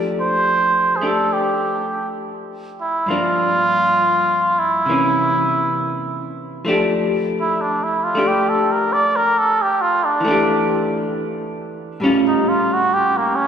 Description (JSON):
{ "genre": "jazz", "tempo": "67 BPM", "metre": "4/4", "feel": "swing 68% on 8ths", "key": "F major", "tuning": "A4 = 439 Hz", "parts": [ { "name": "vintage hollow-body jazz guitar", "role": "accompaniment", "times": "0.0-13.5 s", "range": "G2 to G4", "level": "-20 LUFS", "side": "left 1 dB", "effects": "none" }, { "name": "trumpet with cup mute", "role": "melody", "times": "0.2-13.5 s", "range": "Bb3 to D5", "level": "-18 LUFS", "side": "right 1 dB", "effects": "none" } ], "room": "wet cathedral reverb, RT60 3.9 s", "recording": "recorded in a church or concert hall", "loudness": "-16 LUFS", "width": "side -8 dB against mid", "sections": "0.0-6.7 A section; 6.7-13.5 B section", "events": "muted trumpet solo 6.7-13.5", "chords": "0.0 F69; 3.1 Gm7; 4.9 C7b9; 6.7 F69; 10.2 Em7; 12.0 Aaug7", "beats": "0.41 1.29 2.17 | 3.07 3.96 4.86 5.76 | 6.66 7.56 8.45 9.34 | 10.23 11.12 12.00 12.89" }